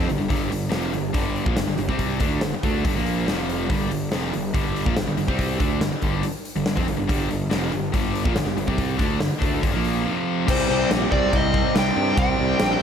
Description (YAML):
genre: hard rock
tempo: 142 BPM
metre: 4/4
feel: straight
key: G minor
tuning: A4 = 439 Hz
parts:
  - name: crunchy overdriven guitar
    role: riff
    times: 0.0-12.8 s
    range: F2 to D4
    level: -27 LUFS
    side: right 12 dB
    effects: none
  - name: high-gain distorted guitar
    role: riff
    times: 0.0-12.8 s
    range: F2 to D4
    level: -27 LUFS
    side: left 10 dB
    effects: distortion
  - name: fuzz picked electric bass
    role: bass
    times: 0.0-12.7 s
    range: F1 to G2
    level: -27 LUFS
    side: equal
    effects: overdrive
  - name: big rock drum kit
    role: drums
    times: 0.1-12.7 s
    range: crash cymbal, hi-hat, kick drum, snare drum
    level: -25 LUFS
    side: equal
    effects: none
  - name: dark smooth lead guitar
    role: melody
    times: 10.5-12.8 s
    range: C5 to G5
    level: -24 LUFS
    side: left 2 dB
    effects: overdrive
  - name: distorted electric guitar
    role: riff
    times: 10.5-12.8 s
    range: C3 to C4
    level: -27 LUFS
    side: equal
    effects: distortion
room: light reverb, small room ambience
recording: none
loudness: -20 LUFS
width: side -8 dB against mid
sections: 0.0-10.5 A section; 10.5-12.8 B section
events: none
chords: 0.0 Gm; 3.3 F5; 3.7 Gm; 10.1 F5; 10.5 C5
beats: | 0.31 0.73 1.16 1.58 | 2.00 2.43 2.85 3.27 | 3.70 4.12 4.54 4.97 | 5.39 5.82 6.24 6.66 | 7.09 7.51 7.94 8.36 | 8.78 9.21 9.63 10.06 | 10.48 10.90 11.33 11.75 | 12.17 12.60